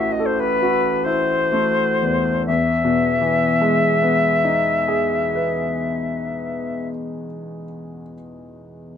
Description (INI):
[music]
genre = classical, impressionist duo for flute and grand piano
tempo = 40-49 BPM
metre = 3/4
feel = rubato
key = E major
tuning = A4 = 440 Hz
[part]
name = silver concert flute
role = melody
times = 0.0-6.9 s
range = B4 to E5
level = -19 LUFS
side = left 3 dB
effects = none
[part]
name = clear grand piano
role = accompaniment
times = 0.0-9.0 s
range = A1 to B4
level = -22 LUFS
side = equal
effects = none
[sound]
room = light reverb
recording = close, detailed microphones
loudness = -17 LUFS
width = side -8 dB against mid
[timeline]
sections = 0.0-2.5 A section; 2.5-6.7 B section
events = slowing down 0.0-2.5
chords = 0.0 Am6; 2.5 Emaj7